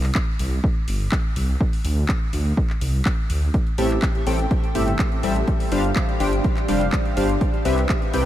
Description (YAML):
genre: progressive house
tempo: 124 BPM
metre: 4/4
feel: straight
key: unclear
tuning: A4 = 440 Hz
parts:
  - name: dark detuned saw bass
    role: bass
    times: 0.0-8.3 s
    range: F1 to D2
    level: -22 LUFS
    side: equal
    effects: sidechain pumping
  - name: house drum kit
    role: drums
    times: 0.0-8.2 s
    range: handclaps, hi-hat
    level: -31 LUFS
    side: equal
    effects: sidechain pumping on hats
  - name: electronic kick drum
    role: drums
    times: 0.2-8.0 s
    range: none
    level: -22 LUFS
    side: equal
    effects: none
  - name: chorused polysynth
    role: stabs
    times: 3.8-8.2 s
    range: A2 to G5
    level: -22 LUFS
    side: left 1 dB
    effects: sidechain pumping, diffuse ambient delay
room: light reverb, digital ambience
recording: none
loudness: -19 LUFS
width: side -12 dB against mid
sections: 0.0-8.3 A section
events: none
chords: 0.0 C5; 1.6 Csus2; 3.5 Am7; 5.5 G7sus4; 7.4 Cmaj7